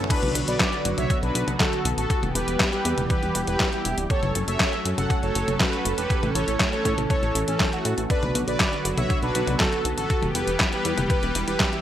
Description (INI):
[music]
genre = italo disco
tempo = 120 BPM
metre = 4/4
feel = straight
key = E dorian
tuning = A4 = 440 Hz
[part]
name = analog synth brass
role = melody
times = 0.0-11.8 s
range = A3 to F#5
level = -27 LUFS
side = equal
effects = chorus, vintage 12-bit sampler grit, digital delay
[part]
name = warm analog pad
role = sustained chords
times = 0.0-11.8 s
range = D3 to A4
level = -29 LUFS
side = right 1 dB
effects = chorus
[part]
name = chorused synth bass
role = bass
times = 0.0-11.6 s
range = D1 to A2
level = -28 LUFS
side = equal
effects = none
[part]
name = detuned 8-bit digital drum machine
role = drums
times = 0.0-11.8 s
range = crash cymbal, handclaps, hi-hat, snare drum, toms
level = -26 LUFS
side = equal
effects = overdrive, high-pass filter on hats, high-pass filter on toms, high-pass filter on cymbals, high-pass filter on snare, high-pass filter on room
[part]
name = electronic kick drum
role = drums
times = 0.1-11.7 s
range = none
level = -25 LUFS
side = equal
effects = overdrive
[sound]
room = moderate plate reverb, RT60 1.2 s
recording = bright 1980s-style digital production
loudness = -21 LUFS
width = side -11 dB against mid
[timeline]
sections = 0.1-11.8 A section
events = none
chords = 0.1 Bm; 2.1 Em; 4.1 F#m; 6.1 A; 8.1 Bm; 10.1 Em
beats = | 0.10 0.60 1.10 1.60 | 2.10 2.60 3.10 3.60 | 4.10 4.60 5.10 5.60 | 6.10 6.60 7.10 7.60 | 8.10 8.60 9.10 9.60 | 10.10 10.60 11.10 11.60